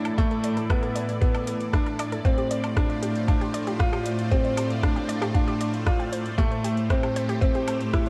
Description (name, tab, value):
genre	piano and strings electronica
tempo	116 BPM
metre	4/4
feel	straight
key	unclear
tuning	A4 = 444 Hz
part	lush unison pad	sustained chords	0.0-8.1 s	A3 to D5	-36 LUFS	equal	chorus, phaser
part	muted studio cello section	bass	0.0-8.1 s	A2	-32 LUFS	equal	sidechain pumping
part	deep house drum kit	drums	0.1-8.1 s	hi-hat, rim click, woodblock	-38 LUFS	equal	small room ambience
part	unison pluck	arpeggios	0.2-8.1 s	G4 to G5	-38 LUFS	equal	cassette tape, sidechain pumping, tape echo
part	clear upright piano	riff	0.2-8.1 s	A3 to F4	-31 LUFS	equal	tape echo
part	electronic kick drum	drums	0.2-8.0 s	none	-26 LUFS	equal	small room ambience
room	moderate scoring stage reverb, RT60 2.0 s, digital ambience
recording	dark, warm production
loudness	-25 LUFS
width	mono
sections	0.0-8.1 A section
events	none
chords	0.0 E7sus4/A; 2.2 G7sus4/A; 6.4 Am7